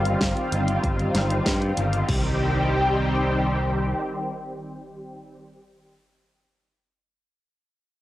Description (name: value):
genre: synthwave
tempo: 96 BPM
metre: 4/4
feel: straight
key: C minor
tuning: A4 = 439 Hz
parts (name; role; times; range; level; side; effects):
- analog string pad; sustained chords; 0.0-5.3 s; Eb3 to G4; -24 LUFS; equal; ensemble chorus, sidechain pumping, cassette tape
- modern bright picked electric bass; bass; 0.0-3.9 s; G1 to G2; -25 LUFS; equal; tube saturation, sidechain pumping, low-pass filter
- pop drum kit; drums; 0.1-2.2 s; crash cymbal, hi-hat, snare drum; -28 LUFS; equal; small room ambience, cassette tape
- electronic kick drum; drums; 0.2-2.2 s; none; -28 LUFS; equal; small room ambience, cassette tape
- impact; sound effects; 2.2-6.1 s; none; -36 LUFS; equal; none
room: wet studio ambience, RT60 0.5 s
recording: home recording on cassette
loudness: -21 LUFS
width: side -15 dB against mid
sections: 0.0-2.1 A section; 2.1-4.6 B section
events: filter sweep on picked electric bass 0.0-2.1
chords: 0.0 Ebadd9/G; 2.1 Cm